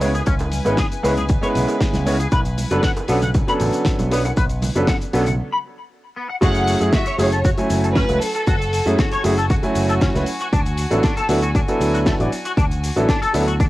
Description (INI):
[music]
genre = nu-disco, nu disco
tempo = 117 BPM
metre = 4/4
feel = straight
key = F# minor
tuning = A4 = 438 Hz
[part]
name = warm concert grand piano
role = accompaniment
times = 0.0-13.4 s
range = F#3 to G#5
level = -21 LUFS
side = right 1 dB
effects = sidechain pumping, tape echo
[part]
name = rich chamber string section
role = sustained chords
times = 0.0-13.7 s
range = F#4 to G#5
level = -32 LUFS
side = left 2 dB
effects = sidechain pumping
[part]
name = clean electric guitar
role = riff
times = 0.0-13.6 s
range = C#3 to B5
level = -25 LUFS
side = left 2 dB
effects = ensemble chorus, tape echo
[part]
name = picked electric bass with an envelope filter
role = bass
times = 0.0-13.7 s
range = F#1 to F#2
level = -22 LUFS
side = equal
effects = tube saturation
[part]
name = damped 70s drum kit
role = drums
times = 0.0-13.7 s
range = crash cymbal, hi-hat, shaker, snare drum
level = -27 LUFS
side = left 1 dB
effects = cassette tape
[part]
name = bongos, cabasa and congas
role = percussion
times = 0.1-5.4 s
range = none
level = -30 LUFS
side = right 2 dB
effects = none
[part]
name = electronic kick drum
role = drums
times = 0.3-13.7 s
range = none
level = -20 LUFS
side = equal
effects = cassette tape
[part]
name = clear studio violin section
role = melody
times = 6.4-9.2 s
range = A4 to F#5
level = -24 LUFS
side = equal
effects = cassette tape, tape echo
[sound]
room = light reverb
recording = home recording on cassette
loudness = -16 LUFS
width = side -17 dB against mid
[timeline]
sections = 0.0-6.4 A section; 6.4-13.7 B section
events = break 5.4-6.4; drop 6.4-13.7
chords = 0.0 C#m7; 2.3 Bm9; 6.4 F#m9; 10.3 D69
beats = | 0.27 0.78 1.29 1.81 | 2.32 2.83 3.35 3.86 | 4.37 4.88 5.40 5.91 | 6.42 6.93 7.45 7.96 | 8.47 8.99 9.50 10.01 | 10.53 11.04 11.55 12.06 | 12.58 13.09 13.60